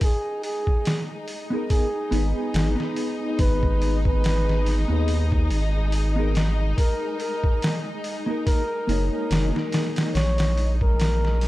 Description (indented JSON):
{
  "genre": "trip hop",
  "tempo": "71 BPM",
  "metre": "4/4",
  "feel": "swing 56% on 16ths",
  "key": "G# minor",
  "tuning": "A4 = 441 Hz",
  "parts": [
    { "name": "trumpet with bucket mute", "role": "melody", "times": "0.0-11.5 s", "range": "G#4 to C#5", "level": "-30 LUFS", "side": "equal", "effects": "tape echo" },
    { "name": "mellow electric guitar", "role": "accompaniment", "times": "0.0-10.1 s", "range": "A#3 to C#5", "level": "-29 LUFS", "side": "equal", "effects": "tremolo, tape echo" },
    { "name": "rich symphonic string section", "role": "sustained chords", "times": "0.0-11.5 s", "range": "D#4", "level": "-33 LUFS", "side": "left 2 dB", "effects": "none" },
    { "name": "trip hop sampler-style drum kit", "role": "drums", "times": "0.0-11.5 s", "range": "hi-hat, kick drum, snare drum", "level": "-24 LUFS", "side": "equal", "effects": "studio reverb" },
    { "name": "flickering grainy texture", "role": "texture", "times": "0.3-11.5 s", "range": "G#3 to G#4", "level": "-39 LUFS", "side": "equal", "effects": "built-in reverb" },
    { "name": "round analog bass", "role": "bass", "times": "2.1-11.5 s", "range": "F#1 to D#2", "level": "-22 LUFS", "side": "equal", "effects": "none" }
  ],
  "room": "little or no reverb",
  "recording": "dark, warm production",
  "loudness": "-21 LUFS",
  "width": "side -16 dB against mid",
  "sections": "0.0-11.5 A section",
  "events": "none",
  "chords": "0.0 G#m; 6.8 D#m; 10.2 A#m7"
}